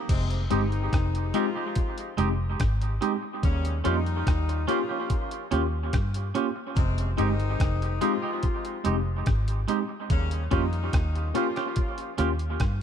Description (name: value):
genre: lovers rock reggae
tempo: 72 BPM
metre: 4/4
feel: straight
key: F minor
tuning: A4 = 440 Hz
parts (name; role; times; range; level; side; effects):
- mellow horn section; second line; 0.1-12.1 s; C3 to F4; -35 LUFS; left 4 dB; dub echo
- vintage muted fingered electric bass; bass; 0.1-12.8 s; F1 to G2; -26 LUFS; equal; none
- detuned 8-bit digital drum machine; drums; 0.1-12.8 s; crash cymbal, hi-hat, kick drum, rim click; -28 LUFS; equal; none
- mellow tine electric piano; accompaniment; 0.5-12.3 s; Ab3 to G4; -31 LUFS; left 1 dB; slow stereo tremolo, dub echo
- twangy electric guitar; stabs; 0.5-12.3 s; Ab3 to G4; -32 LUFS; right 6 dB; dub echo
room: light reverb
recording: none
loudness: -24 LUFS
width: side -8 dB against mid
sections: 0.1-12.8 A section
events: none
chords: 0.1 Fm9; 3.4 Eb9; 6.8 Fm9; 10.1 Eb9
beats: | 0.09 0.93 1.76 2.60 | 3.43 4.27 5.10 5.93 | 6.77 7.60 8.44 9.27 | 10.10 10.93 11.77 12.60